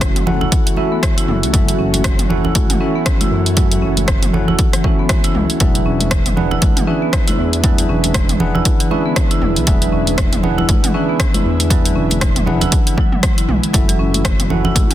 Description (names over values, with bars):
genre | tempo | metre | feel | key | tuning
afro house | 118 BPM | 4/4 | swing 58% on 16ths | unclear | A4 = 440 Hz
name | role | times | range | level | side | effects
ethereal airy pad | sustained chords | 0.0-14.9 s | C#3 to F#4 | -25 LUFS | left 1 dB | ensemble chorus, built-in reverb, sidechain pumping
marimba with medium hard mallets | arpeggios | 0.0-14.9 s | E3 to E4 | -21 LUFS | left 1 dB | sidechain pumping, digital delay
tine electric piano | stabs | 0.0-14.9 s | C#4 to F#5 | -22 LUFS | right 3 dB | medium stereo tremolo, sidechain pumping, digital delay
smooth gliding synth bass | bass | 0.0-14.9 s | E1 to F#2 | -20 LUFS | equal | sidechain pumping
deep house drum kit | drums | 0.0-14.9 s | hi-hat, rim click, toms | -20 LUFS | equal | overdrive
electronic kick drum | drums | 0.0-14.9 s | none | -16 LUFS | equal | overdrive
congas | percussion | 0.0-14.9 s | none | -24 LUFS | right 1 dB | none
room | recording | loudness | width
little or no reverb | dense, heavily limited modern master | -13 LUFS | side -12 dB against mid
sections
0.0-14.9 A section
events
none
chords
0.0 F#m7; 5.6 E7; 13.7 F#m7